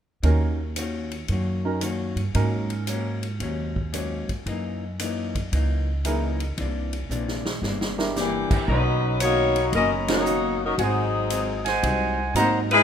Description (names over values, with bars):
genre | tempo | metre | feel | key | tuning
jazz, big band swing | 114 BPM | 4/4 | swing 67% on 8ths | B major | A4 = 440 Hz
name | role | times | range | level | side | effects
clear upright piano | accompaniment | 0.2-12.7 s | A#3 to A#4 | -28 LUFS | right 4 dB | none
vintage hollow-body jazz guitar | accompaniment | 0.2-12.7 s | F#2 to F#4 | -32 LUFS | left 5 dB | none
upright bass | bass | 0.2-12.8 s | F#1 to G#2 | -26 LUFS | right 1 dB | none
swinging big-band drum kit | drums | 0.2-12.8 s | crash cymbal, hi-hat, kick drum, ride cymbal, snare drum | -31 LUFS | equal | none
warm saxophone section | melody | 8.2-12.8 s | E3 to D#5 | -22 LUFS | left 2 dB | none
warm trumpet section | stabs | 8.7-12.6 s | B#4 to B5 | -26 LUFS | right 1 dB | none
room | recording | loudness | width
light reverb | minimal, uncompressed stereo recording | -22 LUFS | side -8 dB against mid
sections
0.2-8.7 A section; 8.7-12.8 B section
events
drum fill 7.1-8.2; band accent 10.0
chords
0.2 D#m7; 2.4 G#9sus4; 4.5 F#13; 6.6 C9; 8.7 Bmaj9; 10.8 G#7